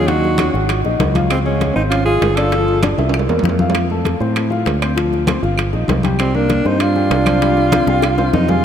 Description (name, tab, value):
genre	Afro-Cuban jazz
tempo	196 BPM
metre	4/4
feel	straight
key	C minor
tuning	A4 = 439 Hz
part	clear alto saxophone	melody	0.0-2.8, 6.2-8.6 s	C4 to A4	-20 LUFS	equal	none
part	dark trombone	second line	0.0-2.8, 6.2-8.6 s	C3 to F4	-22 LUFS	right 3 dB	none
part	warm grand piano	accompaniment	0.0-8.6 s	F3 to Ab5	-21 LUFS	left 5 dB	none
part	fretless electric bass	bass	0.0-8.6 s	G1 to A2	-18 LUFS	right 1 dB	none
part	bongos	percussion	0.1-8.6 s	none	-27 LUFS	left 8 dB	none
part	congas	percussion	0.1-8.6 s	none	-23 LUFS	left 2 dB	none
part	timbales	percussion	0.1-8.6 s	none	-24 LUFS	right 7 dB	none
part	claves	percussion	0.4-8.2 s	none	-32 LUFS	right 7 dB	none
room	wet cathedral reverb, RT60 5.4 s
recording	in a vast, echoing space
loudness	-13 LUFS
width	side -8 dB against mid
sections	0.0-8.6 A section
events	drum fill 3.0-3.7, 7.7-8.6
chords	0.1 Ebm7; 0.7 Absus2; 1.3 Dbmaj7; 2.5 Gsus2; 3.1 C7; 3.7 F; 5.0 Dm7; 5.6 Eb69/G; 6.2 C9sus4